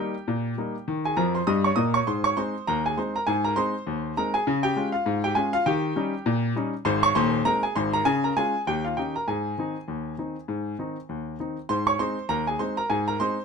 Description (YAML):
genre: ragtime piano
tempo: 100 BPM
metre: 2/4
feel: swing 56% on 16ths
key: Ab major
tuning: A4 = 440 Hz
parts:
  - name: clear baby grand piano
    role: solo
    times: 0.0-13.4 s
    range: Eb1 to Eb6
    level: -23 LUFS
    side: equal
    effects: none
room: light reverb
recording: close, detailed microphones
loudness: -23 LUFS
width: side -5 dB against mid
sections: 0.0-11.7 A section; 11.7-13.4 A section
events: grand piano fill 1.2-2.1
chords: 0.0 Eb; 2.1 Ab; 4.5 Db; 5.7 Eb7; 6.9 Ab; 8.1 Db; 8.7 Eb7; 9.3 Ab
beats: 0.27 | 0.87 1.47 | 2.07 2.67 | 3.27 3.87 | 4.47 5.07 | 5.67 6.26 | 6.86 7.46 | 8.06 8.66 | 9.27 9.87 | 10.48 11.08 | 11.69 12.29 | 12.88